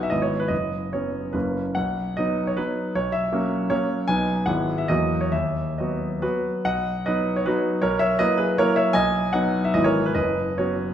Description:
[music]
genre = classical, romantic triple-time dance for piano with dotted rhythms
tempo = 125-170 BPM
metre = 3/4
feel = rubato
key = B major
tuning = A4 = 440 Hz
[part]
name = clear concert grand piano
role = solo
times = 0.0-10.9 s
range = F#1 to G#5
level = -21 LUFS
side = equal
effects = none
[sound]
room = wet recital hall reverb, RT60 1.4 s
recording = minimal, uncompressed stereo recording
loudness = -21 LUFS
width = side -10 dB against mid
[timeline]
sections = 0.0-6.6 A section; 6.6-10.9 A section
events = none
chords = 0.1 E/G#; 0.5 F#sus4; 1.3 F#; 1.8 B; 3.0 F#7/B; 4.1 B; 4.5 E/G#; 4.9 F#7/E; 5.3 B/D#; 6.6 B; 7.8 F#7/B; 9.0 B; 9.8 E/G#; 10.2 F#sus4

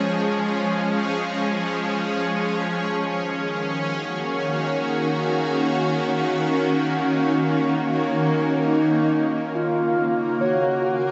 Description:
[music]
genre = ambient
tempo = free time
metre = none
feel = none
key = unclear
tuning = A4 = 440 Hz
[part]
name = shimmering ambient pad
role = sustained chords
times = 0.0-11.1 s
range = Db3 to F5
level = -23 LUFS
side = equal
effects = chorus, built-in reverb
[part]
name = reedy wooden-headed alto flute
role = melody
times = 8.6-11.1 s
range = Eb4 to Gb4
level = -24 LUFS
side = equal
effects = none
[part]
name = backwards swelling texture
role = texture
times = 10.6-11.1 s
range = Ab5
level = -50 LUFS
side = equal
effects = none
[part]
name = concert harp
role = arpeggios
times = 10.4-11.1 s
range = Db5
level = -26 LUFS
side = equal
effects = none
[sound]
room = wet huge ambient reverb, RT60 7.7 s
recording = nothing above 8.0 kHz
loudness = -23 LUFS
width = mono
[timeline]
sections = 0.0-9.5 A section; 9.5-11.1 B section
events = none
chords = 0.0 Db; 2.6 Ebm7; 9.5 Bbm

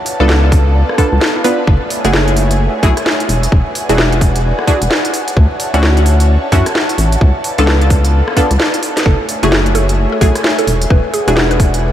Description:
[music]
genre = UK garage, two-step garage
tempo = 130 BPM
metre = 4/4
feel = swing 61% on 16ths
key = F# minor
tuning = A4 = 440 Hz
[part]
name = airy breathy pad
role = sustained chords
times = 0.0-11.9 s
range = A3 to A5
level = -21 LUFS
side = equal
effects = chorus, sidechain pumping
[part]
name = garage drum kit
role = drums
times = 0.1-11.8 s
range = hi-hat, rim click, snare drum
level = -18 LUFS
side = equal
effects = none
[part]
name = punchy chord stab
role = stabs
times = 0.2-11.9 s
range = A3 to B4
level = -17 LUFS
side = equal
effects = chorus, ping-pong delay
[part]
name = rubbery square bass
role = bass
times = 0.2-11.9 s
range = E1 to F#2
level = -12 LUFS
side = equal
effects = none
[part]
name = electronic kick drum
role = drums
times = 0.5-11.7 s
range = none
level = -13 LUFS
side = equal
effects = none
[part]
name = mallet-like synth pluck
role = melody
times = 9.1-11.7 s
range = F#4 to B4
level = -20 LUFS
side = right 3 dB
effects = chorus, phaser, vintage 12-bit sampler grit, tape echo
[sound]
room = moderate huge ambient reverb, RT60 8.8 s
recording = dreamy mix soaked in reverb, vinyl crackle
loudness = -10 LUFS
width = side -11 dB against mid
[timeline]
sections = 0.0-11.9 A section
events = drum fill 8.6-9.1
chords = 0.0 C#7b9b13; 1.7 F#m9; 3.5 E9; 5.1 Dmaj9; 7.2 C#7b9b13; 9.1 F#m9; 10.9 E9

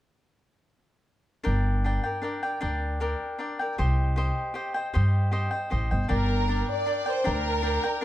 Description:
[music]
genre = mexican folk, mariachi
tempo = 155 BPM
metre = 3/4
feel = straight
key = G minor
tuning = A4 = 440 Hz
[part]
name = cavaquinho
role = accompaniment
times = 1.4-8.0 s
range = D4 to G5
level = -30 LUFS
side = left 1 dB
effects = none
[part]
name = upright bass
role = bass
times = 1.5-7.8 s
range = G1 to G2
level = -25 LUFS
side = equal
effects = none
[part]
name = rich studio violin section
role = melody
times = 6.1-8.0 s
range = Bb4 to D5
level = -27 LUFS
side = right 1 dB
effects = none
[sound]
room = light reverb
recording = dark, warm production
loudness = -24 LUFS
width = side -13 dB against mid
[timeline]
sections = 1.5-6.1 A section; 6.1-8.0 B section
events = none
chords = 1.5 Gm; 3.8 Cm; 6.1 Gm

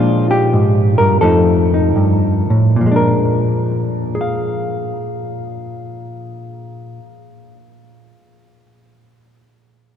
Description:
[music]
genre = solo jazz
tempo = 73-93 BPM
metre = 4/4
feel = swing 69% on 8ths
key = Bb mixolydian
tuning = A4 = 442 Hz
[part]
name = hollow-body jazz guitar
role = solo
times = 0.0-7.6 s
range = F2 to F5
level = -14 LUFS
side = equal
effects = none
[sound]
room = wet cathedral reverb, RT60 5.8 s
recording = recorded in a church or concert hall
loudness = -13 LUFS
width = side -9 dB against mid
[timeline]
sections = 0.0-2.7 A section; 2.7-6.0 B section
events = slowing down 0.0-2.7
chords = 0.0 Bb7; 1.2 F7; 2.7 Bb7

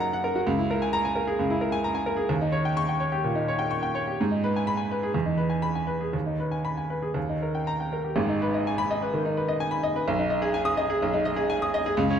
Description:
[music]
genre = classical, virtuoso piano study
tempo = 116-134 BPM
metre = 4/4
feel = rubato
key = G# minor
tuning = A4 = 438 Hz
[part]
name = clear baby grand piano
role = solo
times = 0.0-12.2 s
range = G#1 to D#6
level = -24 LUFS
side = equal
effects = none
[sound]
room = wet recital hall reverb, RT60 1.3 s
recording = dark, warm production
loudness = -24 LUFS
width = side -8 dB against mid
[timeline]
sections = 0.0-8.2 A section; 8.2-12.2 B section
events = none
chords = 0.5 A#m7b5/C#; 2.3 D#7; 4.2 G#m; 5.1 Emaj7; 6.1 G#m/D#; 7.2 D#; 8.2 G#m; 10.1 G#m/B

